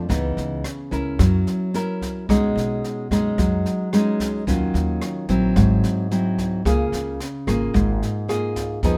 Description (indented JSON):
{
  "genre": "bossa nova",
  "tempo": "110 BPM",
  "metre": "4/4",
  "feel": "straight",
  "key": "unclear",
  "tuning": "A4 = 440 Hz",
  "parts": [
    { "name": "nylon-string guitar", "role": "accompaniment", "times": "0.0-9.0 s", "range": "Ab2 to Bb4", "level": "-23 LUFS", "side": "equal", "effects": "none" },
    { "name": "upright bass", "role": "bass", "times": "0.1-9.0 s", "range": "Ab1 to Gb2", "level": "-26 LUFS", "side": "equal", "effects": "none" },
    { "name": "jazz brush drum kit", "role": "drums", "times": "0.1-9.0 s", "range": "kick drum, rim click, snare drum", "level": "-29 LUFS", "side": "equal", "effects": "none" }
  ],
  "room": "light reverb",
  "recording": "none",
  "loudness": "-22 LUFS",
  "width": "mono",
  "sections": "0.0-9.0 A section",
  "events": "none",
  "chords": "0.1 Dbm9; 1.2 Gb7; 2.3 B69; 4.5 Ebm9; 5.6 Abaug7; 6.7 Db6"
}